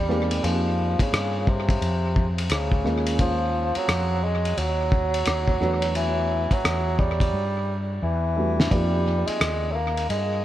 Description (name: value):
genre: hip hop, jazz-hop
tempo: 87 BPM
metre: 4/4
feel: swing 63% on 16ths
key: unclear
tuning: A4 = 440 Hz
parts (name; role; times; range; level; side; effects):
- warm bassoon; melody; 0.0-10.4 s; C3 to Bb3; -26 LUFS; equal; tape echo
- mellow fretless electric bass; bass; 0.0-10.4 s; D2 to G2; -26 LUFS; equal; none
- dark upright piano; accompaniment; 0.1-9.7 s; F3 to Ab4; -29 LUFS; right 1 dB; tape echo
- cloth-damped thuddy drum kit; drums; 0.1-10.3 s; hi-hat, kick drum, ride cymbal, rim click, snare drum; -26 LUFS; equal; tape echo
room: light reverb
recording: echo-heavy mix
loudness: -21 LUFS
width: side -13 dB against mid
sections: 0.0-10.4 A section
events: drum fill 7.3-8.7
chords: 0.0 Fm11; 2.8 Ebm11; 5.6 Em11; 8.7 Fm11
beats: | 0.43 1.12 1.81 2.50 | 3.19 3.88 4.57 5.26 | 5.95 6.64 7.33 8.02 | 8.71 9.40 10.09